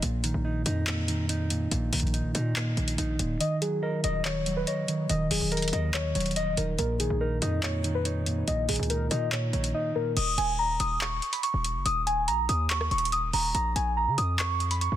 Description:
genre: hip hop, trap.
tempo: 142 BPM.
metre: 4/4.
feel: half-time.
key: unclear.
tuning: A4 = 440 Hz.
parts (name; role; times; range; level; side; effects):
mellow electric guitar; accompaniment; 0.0-10.2 s; Bb2 to Eb5; -30 LUFS; right 2 dB; low-pass filter.
hard-hitting 808-style bass; bass; 0.0-15.0 s; Eb1 to Db3; -30 LUFS; equal; none.
booming analog drum machine; drums; 0.0-14.9 s; crash cymbal, handclaps, hi-hat, kick drum, rim click; -32 LUFS; left 1 dB; none.
muted felt-like synth keys; melody; 3.4-15.0 s; Ab4 to Eb6; -29 LUFS; equal; chorus, low-pass filter, ping-pong delay.
room: little or no reverb.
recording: dense, heavily limited modern master.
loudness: -25 LUFS.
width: side -12 dB against mid.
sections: 0.0-10.2 A section; 10.2-15.0 B section.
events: break 0.0-3.4; kick muted 3.4-3.8; drums muted 9.7-10.2.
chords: 0.0 Bbsus4; 3.4 Ebm; 6.8 Bbsus4; 10.2 N.C.; 13.5 Bb5.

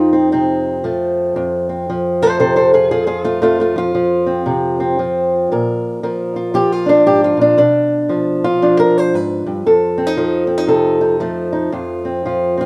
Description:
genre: acoustic country blues, solo or duo.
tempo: 116 BPM.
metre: 4/4.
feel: swing 62% on 8ths.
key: F mixolydian.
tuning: A4 = 443 Hz.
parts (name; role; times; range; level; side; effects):
fingerpicked old ladder-braced acoustic guitar; solo; 0.0-12.7 s; F2 to C5; -16 LUFS; equal; none.
room: light reverb.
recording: band playing live in one room.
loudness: -16 LUFS.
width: mono.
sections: 0.0-12.7 A section.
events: none.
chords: 0.0 F7; 5.5 Bb7; 7.6 Bdim7; 9.7 F7.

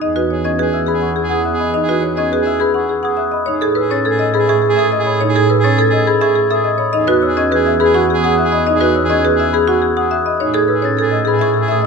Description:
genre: classical, minimalist pattern music.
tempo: 104 BPM.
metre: 3/4.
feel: straight.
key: unclear.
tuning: A4 = 440 Hz.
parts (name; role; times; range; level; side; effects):
marimba with medium hard mallets; melody; 0.0-11.9 s; G#4 to F#5; -18 LUFS; left 8 dB; none.
bright soprano saxophone; second line; 0.0-11.8 s; G#4; -23 LUFS; right 5 dB; none.
marimba with medium hard mallets; arpeggios; 0.0-11.9 s; C#4 to B4; -18 LUFS; right 8 dB; none.
clear symphonic double bass section; bass; 0.0-11.9 s; E2 to A2; -21 LUFS; right 4 dB; none.
glockenspiel with rubber mallets; arpeggios; 0.4-11.9 s; B5 to A6; -20 LUFS; left 4 dB; none.
room: moderate recital hall reverb, RT60 1.5 s.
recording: nothing above 10.6 kHz.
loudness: -12 LUFS.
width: side -5 dB against mid.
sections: 0.0-11.9 A section.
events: none.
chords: 0.0 Emaj9; 3.5 Amaj9; 6.9 Emaj9; 10.4 Amaj9.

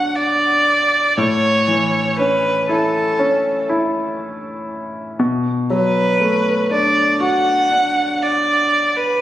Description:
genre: pop.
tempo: 60 BPM.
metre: 4/4.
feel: straight.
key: B minor.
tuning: A4 = 440 Hz.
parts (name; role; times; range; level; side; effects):
warm violin; melody; 0.0-9.2 s; A4 to F#5; -16 LUFS; right 1 dB; none.
clear concert grand piano; accompaniment; 0.0-9.2 s; A2 to F#4; -19 LUFS; left 1 dB; none.
room: light reverb.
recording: recorded on a phone in the room, studio reverb, compression.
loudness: -14 LUFS.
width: side -13 dB against mid.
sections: 0.0-9.2 A section.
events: none.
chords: 0.0 Bm7; 1.2 A; 5.2 Bm7.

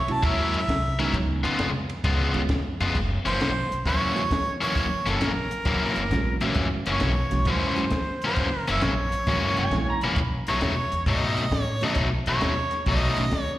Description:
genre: electric blues shuffle.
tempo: 133 BPM.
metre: 4/4.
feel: swing 67% on 8ths.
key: F# mixolydian.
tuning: A4 = 441 Hz.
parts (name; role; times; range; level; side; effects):
bright harmonica; melody; 0.0-13.6 s; A4 to A5; -28 LUFS; right 1 dB; overdrive, slapback echo.
mellow reed electric piano; accompaniment; 0.1-13.3 s; D#3 to F#4; -32 LUFS; right 4 dB; slapback echo.
upright bass; bass; 0.1-13.5 s; F#1 to A2; -29 LUFS; equal; none.
compact cocktail drum kit; drums; 0.1-13.5 s; crash cymbal, hi-hat, kick drum, ride cymbal, snare drum; -29 LUFS; equal; slapback echo.
cranked stack guitar; riff; 0.2-13.2 s; F#2 to A#4; -26 LUFS; left 2 dB; overdrive, slapback echo.
electric slide guitar; second line; 9.6-10.3 s; G#5 to B5; -31 LUFS; right 3 dB; slapback echo.
room: studio ambience.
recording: live gig heard through the venue's PA, recital hall reverb.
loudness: -22 LUFS.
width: side -15 dB against mid.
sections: 0.0-3.0 A section; 3.0-13.6 B section.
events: harmonica solo 0.0-3.0.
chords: 0.0 F#7; 1.1 C#7; 3.0 F#7; 10.2 B7.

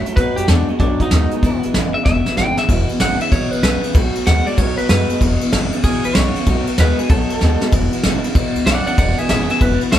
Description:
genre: rockabilly.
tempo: 191 BPM.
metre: 4/4.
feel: swing 64% on 8ths.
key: E major.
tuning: A4 = 439 Hz.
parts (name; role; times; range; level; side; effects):
electric guitar through a small old amp; melody; 0.0-10.0 s; D4 to G5; -21 LUFS; left 1 dB; none.
picked steel-string acoustic guitar; accompaniment; 0.0-10.0 s; E2 to F#4; -26 LUFS; left 1 dB; none.
electric guitar through a small old amp; riff; 0.0-10.0 s; E2 to G#3; -21 LUFS; equal; none.
upright bass; bass; 0.0-10.0 s; E1 to F#2; -19 LUFS; equal; none.
soft brush drum kit; drums; 0.1-10.0 s; hi-hat, kick drum, ride cymbal, snare drum; -18 LUFS; equal; none.
room: light reverb.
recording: band playing live in one room.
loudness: -14 LUFS.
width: side -11 dB against mid.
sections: 0.0-2.7 A section; 2.7-10.0 B section.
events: drum fill 2.1-2.7, 7.4-7.7.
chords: 0.2 B7; 1.4 E; 4.0 B7; 5.2 E; 6.5 B7; 7.7 E.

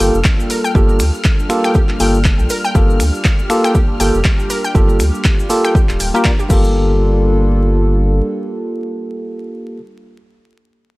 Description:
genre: deep house.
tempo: 120 BPM.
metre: 4/4.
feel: swing 58% on 16ths.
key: G minor.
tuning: A4 = 440 Hz.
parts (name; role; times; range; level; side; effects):
hollow soft pad; sustained chords; 0.0-9.8 s; G3 to A4; -23 LUFS; equal; chorus, sidechain pumping.
analog pluck; arpeggios; 0.0-7.0 s; G4 to G5; -23 LUFS; equal; chorus, sidechain pumping, tape echo.
tine electric piano; stabs; 0.0-9.8 s; Bb3 to Bb4; -18 LUFS; equal; auto-pan, sidechain pumping, tape echo.
round analog bass; bass; 0.0-8.2 s; D1 to D2; -15 LUFS; equal; tube saturation, sidechain pumping.
punchy analog drum machine; drums; 0.0-6.6 s; crash cymbal, finger snaps, handclaps, hi-hat; -22 LUFS; equal; none.
cabasa; percussion; 0.0-6.7 s; none; -32 LUFS; left 2 dB; none.
warm studio violin section; texture; 0.0-6.8 s; F6; -31 LUFS; left 2 dB; sidechain pumping.
electronic kick drum; drums; 0.2-6.6 s; none; -13 LUFS; equal; overdrive.
room: digital ambience.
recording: dry, gritty hardware recording, vinyl crackle.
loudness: -12 LUFS.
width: side -21 dB against mid.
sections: 0.0-6.7 A section; 6.7-10.7 B section.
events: drop 0.0-6.7.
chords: 0.0 Gm9.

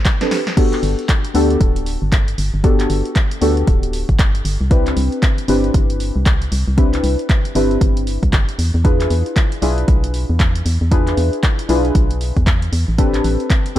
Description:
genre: deep house.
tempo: 116 BPM.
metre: 4/4.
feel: swing 61% on 16ths.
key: G major.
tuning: A4 = 441 Hz.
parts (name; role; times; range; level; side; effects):
deep mellow chord stab; stabs; 0.0-13.8 s; B3 to B4; -20 LUFS; left 2 dB; chorus, sidechain pumping, ping-pong delay.
electronic kick drum; drums; 0.1-13.6 s; none; -15 LUFS; equal; overdrive.
punchy analog drum machine; drums; 0.1-13.8 s; crash cymbal, handclaps, hi-hat, snare drum; -25 LUFS; equal; none.
organ-like FM bass; bass; 0.8-13.8 s; D1 to E2; -18 LUFS; equal; sidechain pumping.
room: little or no reverb.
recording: none.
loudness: -14 LUFS.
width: side -13 dB against mid.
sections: 0.6-13.8 A section.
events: drum fill 0.0-0.6; drop 0.6-13.8.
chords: 0.0 Am11; 0.6 Gmaj9; 4.7 Cmaj9; 8.8 E7b9; 13.0 Am11.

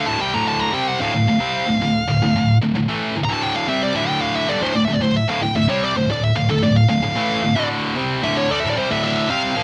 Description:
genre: metal.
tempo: 112 BPM.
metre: 4/4.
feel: straight.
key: D minor.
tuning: A4 = 439 Hz.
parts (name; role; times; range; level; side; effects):
high-gain lead guitar; melody; 0.0-9.6 s; A4 to Bb5; -23 LUFS; equal; distortion.
heavy high-gain guitar; riff; 0.0-9.6 s; D2 to C4; -21 LUFS; equal; distortion.
room: little or no reverb.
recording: dry, close 1970s-style studio recording.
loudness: -19 LUFS.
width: mono.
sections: 0.0-9.6 A section.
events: lead electric guitar solo 0.0-9.6.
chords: 0.0 Dm.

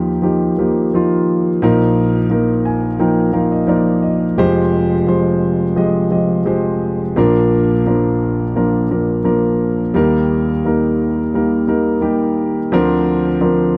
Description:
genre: folk.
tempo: 86 BPM.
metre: 4/4.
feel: straight.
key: Eb major.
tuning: A4 = 442 Hz.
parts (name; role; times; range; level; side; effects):
warm concert grand piano; solo; 0.0-13.8 s; F1 to Ab5; -16 LUFS; equal; none.
room: little or no reverb.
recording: dry, close 1970s-style studio recording.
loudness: -16 LUFS.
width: mono.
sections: 0.0-13.8 A section.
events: none.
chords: 0.0 Ebadd9; 1.6 Bbsus4; 4.4 Fmadd9; 7.2 Bb; 9.9 Eb; 12.7 Bbadd9/D.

